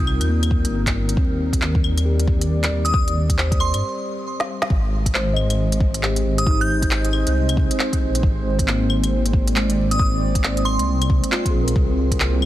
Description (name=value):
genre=future garage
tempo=136 BPM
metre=4/4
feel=swing 62% on 16ths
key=unclear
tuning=A4 = 444 Hz
part: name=mellow tine electric piano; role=accompaniment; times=0.0-12.5 s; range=Ab3 to Eb5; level=-27 LUFS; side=left 2 dB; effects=vintage 12-bit sampler grit, sidechain pumping, ping-pong delay
part: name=warbly tape-like pad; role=sustained chords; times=0.0-12.5 s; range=G3 to Eb5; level=-27 LUFS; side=right 2 dB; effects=chorus, built-in reverb, vintage 12-bit sampler grit, sidechain pumping
part: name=dark detuned saw bass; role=bass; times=0.0-12.5 s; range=G1 to G2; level=-21 LUFS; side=equal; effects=sidechain pumping
part: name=organic electronic drum kit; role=drums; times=0.1-12.5 s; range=claves, handclaps, hi-hat, snare drum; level=-25 LUFS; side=equal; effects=studio reverb
part: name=electronic kick drum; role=drums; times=0.5-12.2 s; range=none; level=-21 LUFS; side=equal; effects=studio reverb
part: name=glassy synth bell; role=melody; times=2.8-7.0, 9.9-11.0 s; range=C6 to G6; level=-28 LUFS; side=right 1 dB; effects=chorus, phaser, digital delay
room=digital ambience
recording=dense, heavily limited modern master, vinyl crackle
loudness=-17 LUFS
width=side -14 dB against mid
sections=0.0-4.7 A section; 4.7-12.5 B section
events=break 3.8-4.7; drum fill 4.4-4.7; band accent 4.6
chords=0.0 Cm7; 1.2 Ebmaj7; 4.7 Ab; 11.8 C7(no3)